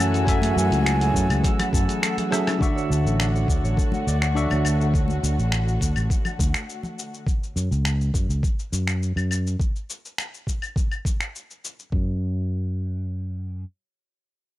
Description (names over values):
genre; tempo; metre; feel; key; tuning
sunset chillout; 103 BPM; 4/4; straight; F# minor; A4 = 440 Hz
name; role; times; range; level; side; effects
breathy mellow silver concert flute; melody; 0.0-2.0 s; G#5; -30 LUFS; right 2 dB; analog delay
bell-like tine electric piano; accompaniment; 0.0-5.0 s; D3 to C#6; -26 LUFS; equal; auto-pan, analog delay
muted studio string section; sustained chords; 0.0-7.2 s; D3 to F#4; -30 LUFS; left 2 dB; none
Celtic harp; arpeggios; 0.0-7.2 s; E4 to D5; -34 LUFS; right 1 dB; analog delay
sustaining fretless electric bass; bass; 0.0-13.6 s; A1 to F#2; -23 LUFS; equal; tube saturation, lush chorus
dusty soul sampler-style drum kit; drums; 0.0-11.9 s; claves, finger snaps, hi-hat, rim click, shaker; -28 LUFS; left 1 dB; overdrive
drifting glass-harmonics texture; texture; 0.0-2.6 s; E6; -38 LUFS; right 3 dB; chorus, built-in reverb
electronic kick drum; drums; 0.3-12.0 s; none; -24 LUFS; equal; overdrive
congas; percussion; 0.4-6.9 s; none; -32 LUFS; left 3 dB; none
room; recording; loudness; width
small room ambience; dry, gritty hardware recording, transformer saturation; -21 LUFS; side -15 dB against mid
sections
0.0-2.6 A section; 2.6-11.9 B section; 11.9-14.3 C section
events
kick drops out 2.0-2.6; drum fill 2.3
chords
0.0 F#m9; 2.6 Dmaj7; 7.3 F#5; 11.9 N.C.